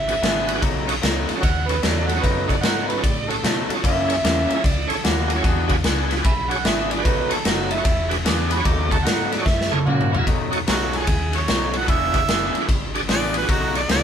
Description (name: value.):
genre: electric blues shuffle.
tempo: 149 BPM.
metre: 4/4.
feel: swing 64% on 8ths.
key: B mixolydian.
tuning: A4 = 440 Hz.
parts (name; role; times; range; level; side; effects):
overdriven harmonica; second line; 0.0-10.3 s; C#4 to D6; -25 LUFS; right 3 dB; none.
vintage muted fingered electric bass; bass; 0.0-14.0 s; E1 to B2; -27 LUFS; equal; none.
bright tonewheel organ; accompaniment; 0.1-13.8 s; B3 to E5; -28 LUFS; right 2 dB; slow rotary speaker, overdrive, chorus vibrato.
raw garage drum kit; drums; 0.1-14.0 s; kick drum, ride cymbal, snare drum, toms; -21 LUFS; equal; none.
electric guitar through a small old amp; riff; 0.2-14.0 s; F#2 to G#4; -26 LUFS; left 3 dB; none.
warm harmonica; melody; 10.7-14.0 s; C#4 to F#5; -24 LUFS; right 4 dB; overdrive.
room: moderate studio reverb, RT60 0.8 s.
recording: band playing live in one room.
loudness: -18 LUFS.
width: side -8 dB against mid.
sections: 0.0-10.3 A section; 10.3-14.0 A section.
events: harmonica solo 0.0-10.3, 10.3-14.0; drum fill 9.5-10.3.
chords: 0.0 E7; 0.6 B7; 3.8 F#7; 5.4 E7; 7.1 B7; 7.9 E7; 8.7 B7; 9.5 F#7; 10.3 B7; 11.9 E7; 13.5 B7.